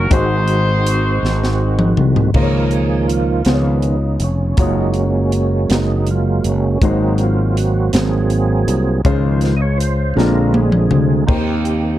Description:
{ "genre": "slow gospel", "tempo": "54 BPM (dotted quarters)", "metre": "6/8", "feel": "straight", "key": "Db major", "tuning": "A4 = 441 Hz", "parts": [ { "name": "clear horn section", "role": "melody", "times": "0.0-2.0 s", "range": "Eb4 to C5", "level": "-19 LUFS", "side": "left 1 dB", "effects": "none" }, { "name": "warm grand piano", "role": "accompaniment", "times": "0.0-12.0 s", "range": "Ab2 to Db5", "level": "-23 LUFS", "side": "left 4 dB", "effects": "none" }, { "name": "overdriven tonewheel organ", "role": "sustained chords", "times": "0.0-12.0 s", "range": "D3 to Eb5", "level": "-20 LUFS", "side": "right 4 dB", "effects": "slow rotary speaker, chorus vibrato" }, { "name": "sustaining fretless electric bass", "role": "bass", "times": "0.0-12.0 s", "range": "F1 to Eb2", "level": "-17 LUFS", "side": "equal", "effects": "none" }, { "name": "crisp fusion drum kit", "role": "drums", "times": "0.1-11.8 s", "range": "crash cymbal, hi-hat, kick drum, snare drum, toms", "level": "-18 LUFS", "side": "left 1 dB", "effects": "none" } ], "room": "little or no reverb", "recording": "dark, warm production", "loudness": "-13 LUFS", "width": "side -13 dB against mid", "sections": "0.0-2.3 A section; 2.3-11.3 B section", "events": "drum fill 1.2-2.3, 10.2-11.3; tonewheel organ solo 2.3-11.3", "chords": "0.1 Ab7; 2.3 Db6; 3.5 Db7; 4.6 Gbmaj7; 6.8 Ab7; 9.0 Dbmaj7; 10.2 Bb7; 11.3 Eb6" }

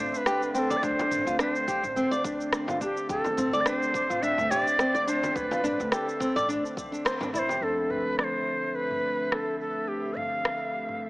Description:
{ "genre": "organic downtempo", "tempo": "106 BPM", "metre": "4/4", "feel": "swing 55% on 16ths", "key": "D dorian", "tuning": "A4 = 440 Hz", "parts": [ { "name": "bright Native American-style cedar flute", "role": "melody", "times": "0.0-11.0 s", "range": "G4 to F5", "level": "-28 LUFS", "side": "equal", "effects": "tape echo" }, { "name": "warm analog pad", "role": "sustained chords", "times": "0.0-11.1 s", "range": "D3 to E5", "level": "-37 LUFS", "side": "equal", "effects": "chorus, sidechain pumping" }, { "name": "flamenco guitar", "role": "arpeggios", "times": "0.0-7.6 s", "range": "C4 to D5", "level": "-28 LUFS", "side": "equal", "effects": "tape echo" }, { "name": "upright bass", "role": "bass", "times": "0.0-7.5 s", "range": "A1 to D2", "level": "-40 LUFS", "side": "equal", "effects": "tube saturation" }, { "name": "afro-pop drum kit", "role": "drums", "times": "0.1-11.0 s", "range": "rim click, shaker, toms", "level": "-32 LUFS", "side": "equal", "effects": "low-pass filter on perc, low-pass filter on toms, low-pass filter on snare" }, { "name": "frame drum", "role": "percussion", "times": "0.7-7.6 s", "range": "none", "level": "-37 LUFS", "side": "left 1 dB", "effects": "none" }, { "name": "electronic kick drum", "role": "drums", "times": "0.8-7.5 s", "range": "none", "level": "-40 LUFS", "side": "equal", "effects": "none" }, { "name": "mellow tine electric piano", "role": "accompaniment", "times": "7.6-11.1 s", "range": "F3 to A4", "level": "-34 LUFS", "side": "left 1 dB", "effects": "sidechain pumping, tape echo" }, { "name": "sub drop", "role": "sound effects", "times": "7.6-9.9 s", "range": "none", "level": "-51 LUFS", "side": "equal", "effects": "none" } ], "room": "moderate lush hall reverb, RT60 2.1 s", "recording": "small speaker sound", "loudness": "-25 LUFS", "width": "side -21 dB against mid", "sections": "0.0-7.6 A section; 7.6-11.1 B section", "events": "band accent 7.1; impact 7.6-9.9", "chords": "0.0 D7(no3); 7.6 Dm7" }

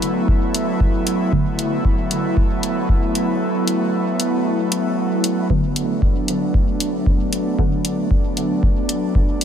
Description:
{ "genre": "dub techno", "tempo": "115 BPM", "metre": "4/4", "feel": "swing 55% on 16ths", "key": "B minor", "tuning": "A4 = 440 Hz", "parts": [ { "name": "airy breathy pad", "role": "sustained chords", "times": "0.0-9.4 s", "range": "F#3 to E4", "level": "-20 LUFS", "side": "equal", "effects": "chorus, sidechain pumping" }, { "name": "electronic hi-hat", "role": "drums", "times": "0.0-9.4 s", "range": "none", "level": "-23 LUFS", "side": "left 2 dB", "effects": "none" }, { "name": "electronic kick drum", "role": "drums", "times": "0.3-9.3 s", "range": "none", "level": "-18 LUFS", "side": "equal", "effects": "none" }, { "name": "deep mellow chord stab", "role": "stabs", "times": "1.3-1.4, 5.5-7.7 s", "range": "D3 to B3", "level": "-27 LUFS", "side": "equal", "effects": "chorus, phaser, sidechain pumping, dub echo" } ], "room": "moderate huge ambient reverb, RT60 6.2 s", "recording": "dreamy mix soaked in reverb", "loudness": "-17 LUFS", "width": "side -9 dB against mid", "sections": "0.0-9.4 A section", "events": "filter sweep on synth stab 0.0-9.4; kick drops out 3.4-5.5", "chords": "0.0 Bm7" }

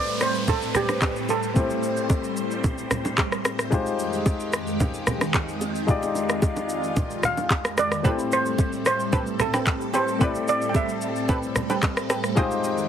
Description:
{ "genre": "amapiano", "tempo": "111 BPM", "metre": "4/4", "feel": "straight", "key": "A minor", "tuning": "A4 = 444 Hz", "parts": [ { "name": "steel pan", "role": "melody", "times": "0.0-1.8, 7.3-12.1 s", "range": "G4 to G5", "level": "-26 LUFS", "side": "right 3 dB", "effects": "digital delay" }, { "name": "warm concert grand piano", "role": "accompaniment", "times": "0.0-12.9 s", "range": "Ab3 to D5", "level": "-29 LUFS", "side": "left 4 dB", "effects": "none" }, { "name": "phased string machine", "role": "sustained chords", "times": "0.0-12.9 s", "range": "F2 to G5", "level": "-29 LUFS", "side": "right 1 dB", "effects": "ensemble chorus, phaser, sidechain pumping" }, { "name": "downlifter", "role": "sound effects", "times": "0.0-3.7 s", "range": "none", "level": "-36 LUFS", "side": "equal", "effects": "none" }, { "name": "smooth R&B drum kit", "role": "drums", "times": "0.1-12.9 s", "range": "handclaps, kick drum, rim click, shaker", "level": "-25 LUFS", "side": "equal", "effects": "vintage 12-bit sampler grit" }, { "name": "bongos and congas", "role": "percussion", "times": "0.5-12.5 s", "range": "none", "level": "-30 LUFS", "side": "right 2 dB", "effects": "none" }, { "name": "punchy chord stab", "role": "stabs", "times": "8.0-12.9 s", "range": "C4 to Eb5", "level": "-30 LUFS", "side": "right 2 dB", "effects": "chorus, digital delay" } ], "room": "light reverb, small room ambience", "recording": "heavily compressed radio sound", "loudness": "-21 LUFS", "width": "side -9 dB against mid", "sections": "0.0-12.9 A section", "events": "none", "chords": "0.0 Am9; 3.7 Fm9; 8.0 Am9; 12.4 Fm9" }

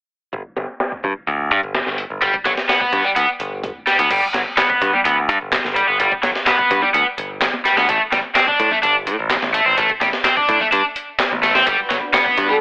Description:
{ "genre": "breakbeat, breaks", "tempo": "127 BPM", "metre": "4/4", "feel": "straight", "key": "unclear", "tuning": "A4 = 438 Hz", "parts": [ { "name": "modern bright picked electric bass", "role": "bass", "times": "0.3-12.5 s", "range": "G1 to A2", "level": "-21 LUFS", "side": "equal", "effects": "tube saturation, low-pass filter" }, { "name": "breakbeat sampler-style drum kit", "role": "drums", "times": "0.3-12.5 s", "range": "crash cymbal, hi-hat, kick drum, snare drum", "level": "-22 LUFS", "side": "equal", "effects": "low-pass filter on hats, low-pass filter on kick, low-pass filter on snare, low-pass filter on cymbals" }, { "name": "cranked stack guitar", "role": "riff", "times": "2.2-12.5 s", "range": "F#3 to D4", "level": "-16 LUFS", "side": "equal", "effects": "overdrive, tube saturation, low-pass filter, digital delay" }, { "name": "congas", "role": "percussion", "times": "4.3-12.6 s", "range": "none", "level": "-35 LUFS", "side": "equal", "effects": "none" }, { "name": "electronic handclaps", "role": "drums", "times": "4.6-12.2 s", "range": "none", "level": "-20 LUFS", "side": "equal", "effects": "none" }, { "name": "lush unison pad", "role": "sustained chords", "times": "11.7-12.6 s", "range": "D4 to B4", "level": "-25 LUFS", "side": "equal", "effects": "chorus, sidechain pumping" }, { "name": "breathy flute-like synth lead", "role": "melody", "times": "12.5-12.6 s", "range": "A4", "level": "-16 LUFS", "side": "equal", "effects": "chorus, old record sound" } ], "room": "moderate studio reverb, RT60 0.6 s", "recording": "telephone sound", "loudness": "-14 LUFS", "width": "side -40 dB against mid", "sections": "0.3-4.1 A section; 4.1-12.6 B section", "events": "filter sweep on drum 0.3-4.1", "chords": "0.3 G; 7.9 N.C.; 11.7 Gmaj7" }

